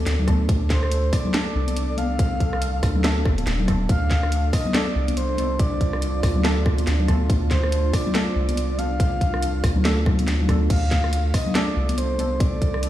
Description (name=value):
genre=deep dubstep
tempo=141 BPM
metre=4/4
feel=swing 59% on 16ths, half-time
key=D phrygian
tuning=A4 = 442 Hz
part: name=breathy flute-like synth lead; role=melody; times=0.0-12.9 s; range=C5 to F5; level=-30 LUFS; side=equal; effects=chorus, dub echo
part: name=deep dark ambient pad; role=sustained chords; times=0.0-12.9 s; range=D4 to A4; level=-30 LUFS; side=right 1 dB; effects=chorus, built-in reverb
part: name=soft dub sub bass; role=bass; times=0.0-12.9 s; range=Eb1 to D2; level=-22 LUFS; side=equal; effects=none
part: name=garage drum kit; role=drums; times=0.1-12.9 s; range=crash cymbal, hi-hat, rim click, snare drum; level=-28 LUFS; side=equal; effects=none
part: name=congas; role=percussion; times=0.2-12.3 s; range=none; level=-28 LUFS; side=left 2 dB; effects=none
part: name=electronic kick drum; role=drums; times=0.3-12.7 s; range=none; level=-22 LUFS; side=equal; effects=none
part: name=filtered dub chord stab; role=stabs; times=1.3-11.7 s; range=A3 to A4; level=-32 LUFS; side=right 1 dB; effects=chorus, dub echo
room=little or no reverb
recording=played on a big sound system in a bare room, stone room reverb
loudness=-19 LUFS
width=side -13 dB against mid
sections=0.0-12.9 A section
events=none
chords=0.0 D5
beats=0.06 | 0.49 0.92 1.34 1.77 | 2.19 2.62 3.04 3.47 | 3.89 4.32 4.74 5.17 | 5.59 6.02 6.45 6.87 | 7.30 7.72 8.15 8.57 | 9.00 9.43 9.85 10.28 | 10.70 11.13 11.55 11.98 | 12.40 12.83